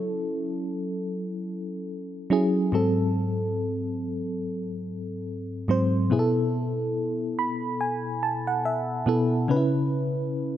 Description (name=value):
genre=R&B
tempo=71 BPM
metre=4/4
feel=swing 58% on 16ths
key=unclear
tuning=A4 = 439 Hz
part: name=FM electric piano with auto-pan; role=solo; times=0.0-10.6 s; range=G#2 to B5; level=-24 LUFS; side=equal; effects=none
room=light reverb, digital ambience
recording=dark, warm production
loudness=-24 LUFS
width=side -11 dB against mid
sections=0.0-10.6 A section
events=FM electric piano fill 7.0-9.5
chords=0.0 F#m7; 2.7 G#7b9; 6.1 B7sus4; 9.5 C#m7